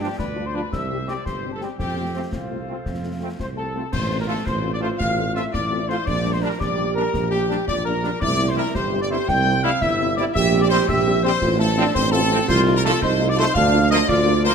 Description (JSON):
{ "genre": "military-style march for wind band", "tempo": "112 BPM (dotted quarters)", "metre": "6/8", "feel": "straight", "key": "F major", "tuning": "A4 = 440 Hz", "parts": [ { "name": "clear trumpet section", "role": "melody", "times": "0.0-14.5 s", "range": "F4 to G5", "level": "-27 LUFS", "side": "left 1 dB", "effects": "none" }, { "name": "mellow hollow wooden piccolo", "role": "second line", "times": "0.0-14.5 s", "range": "F5 to G6", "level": "-28 LUFS", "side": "left 5 dB", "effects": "none" }, { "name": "warm woodwind section", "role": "second line", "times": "0.0-14.5 s", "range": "F4 to G5", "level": "-28 LUFS", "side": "left 1 dB", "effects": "none" }, { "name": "mellow French horn section", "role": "accompaniment", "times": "0.0-14.5 s", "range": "G3 to G4", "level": "-30 LUFS", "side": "left 6 dB", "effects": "none" }, { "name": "brilliant trombone section", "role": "sustained chords", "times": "0.0-14.5 s", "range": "F3 to F4", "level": "-29 LUFS", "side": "right 2 dB", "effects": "none" }, { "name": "mellow tuba", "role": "bass", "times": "0.0-14.5 s", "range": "G1 to F2", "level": "-24 LUFS", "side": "right 4 dB", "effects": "none" }, { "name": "concert snare drum, concert bass drum and clash cymbals", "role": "drums", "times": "0.2-14.5 s", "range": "none", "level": "-31 LUFS", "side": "left 1 dB", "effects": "none" }, { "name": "warm euphonium", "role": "second line", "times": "4.5-14.5 s", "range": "C4 to G4", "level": "-25 LUFS", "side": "right 3 dB", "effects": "none" } ], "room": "moderate recital hall reverb, RT60 1.8 s", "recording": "none", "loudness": "-18 LUFS", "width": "side -6 dB against mid", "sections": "0.0-3.9 A section; 3.9-14.5 A section", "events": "none", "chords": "0.0 G5; 0.7 C; 1.8 F; 3.9 F/A; 6.1 Gm/Bb; 8.2 C; 10.3 C7/Bb; 11.4 F/A; 12.5 F7/C; 13.6 Bb/D" }